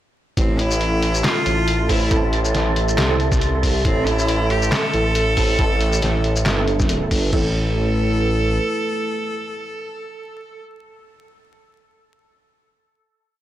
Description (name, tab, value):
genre	deep dubstep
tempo	138 BPM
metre	4/4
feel	swing 56% on 16ths, half-time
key	A minor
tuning	A4 = 440 Hz
part	bright cello	melody	0.4-10.6 s	C4 to A4	-24 LUFS	right 1 dB	dub echo
part	dark analog pad	sustained chords	1.1-10.6 s	A3 to C6	-27 LUFS	equal	chorus
part	dark detuned saw bass	bass	0.4-8.6 s	G1 to C2	-20 LUFS	equal	none
part	trip hop sampler-style drum kit	drums	0.4-7.4 s	crash cymbal, kick drum	-22 LUFS	equal	none
part	trip hop sampler-style drum kit	drums	0.4-7.2 s	handclaps, hi-hat, shaker, snare drum	-24 LUFS	left 1 dB	none
part	wind-like tuned noise texture	texture	0.9-7.3 s	A4	-30 LUFS	right 3 dB	built-in reverb
part	filtered dub chord stab	stabs	1.9-10.6 s	C4 to A4	-29 LUFS	right 3 dB	none
room	digital ambience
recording	dry, gritty hardware recording, transformer saturation, vinyl crackle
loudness	-17 LUFS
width	side -13 dB against mid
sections	0.4-7.3 drop; 7.3-10.8 final chord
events	drop 0.4-7.3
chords	0.4 Am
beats	| 0.37 0.81 1.24 1.68 | 2.11 2.55 2.98 3.42 | 3.85 4.29 4.72 5.16 | 5.59 6.02 6.46 6.89 | 7.33 7.76 8.20 8.63 | 9.07 9.50 9.94 10.37